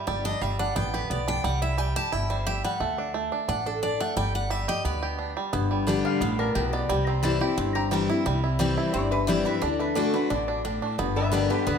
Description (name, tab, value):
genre	bluegrass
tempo	176 BPM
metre	4/4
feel	straight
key	G major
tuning	A4 = 440 Hz
part	bluegrass banjo	melody	0.0-11.8 s	D3 to G4	-29 LUFS	right 5 dB	none
part	picked steel-string acoustic guitar	accompaniment	0.1-11.8 s	G2 to A5	-27 LUFS	left 3 dB	none
part	upright bass	bass	0.1-11.8 s	G1 to D2	-30 LUFS	equal	none
part	lap resonator guitar	second line	6.0-11.8 s	G4 to Bb5	-30 LUFS	left 3 dB	none
room	wet large studio reverb, RT60 1.4 s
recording	none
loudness	-24 LUFS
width	side -7 dB against mid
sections	0.0-5.5 A section; 5.5-11.8 A section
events	steel-string acoustic guitar solo 0.0-5.5; resonator guitar played with a steel bar solo 5.5-11.8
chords	0.1 G; 1.4 C; 2.8 D; 4.2 G; 6.9 C; 9.6 D; 11.0 G